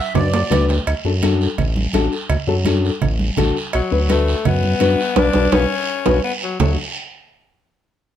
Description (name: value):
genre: latin, cumbia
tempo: 167 BPM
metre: 4/4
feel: straight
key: D major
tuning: A4 = 440 Hz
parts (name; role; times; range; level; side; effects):
- accordion; melody; 0.0-0.6 s; D5 to E5; -23 LUFS; right 4 dB; light tremolo tuning
- nylon-string guitar; accompaniment; 0.1-6.8 s; D4 to B4; -20 LUFS; left 5 dB; none
- round analog bass; bass; 0.1-6.8 s; A1 to F#2; -19 LUFS; equal; none
- congas; percussion; 0.1-6.7 s; none; -22 LUFS; right 3 dB; none
- guiro; percussion; 0.1-6.7 s; none; -29 LUFS; right 4 dB; none
- cowbell and timbales; percussion; 0.2-6.7 s; none; -24 LUFS; right 6 dB; none
- growling tenor saxophone; second line; 3.7-6.8 s; F#3 to D4; -22 LUFS; left 6 dB; none
room: moderate studio reverb, RT60 0.7 s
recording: none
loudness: -15 LUFS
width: side -10 dB against mid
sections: 0.9-6.6 A section; 6.6-8.0 B section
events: drum fill 0.2-0.9, 6.1-6.6; band accent 5.2-6.6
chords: 0.0 Bm; 0.9 D; 3.7 Bm; 6.6 D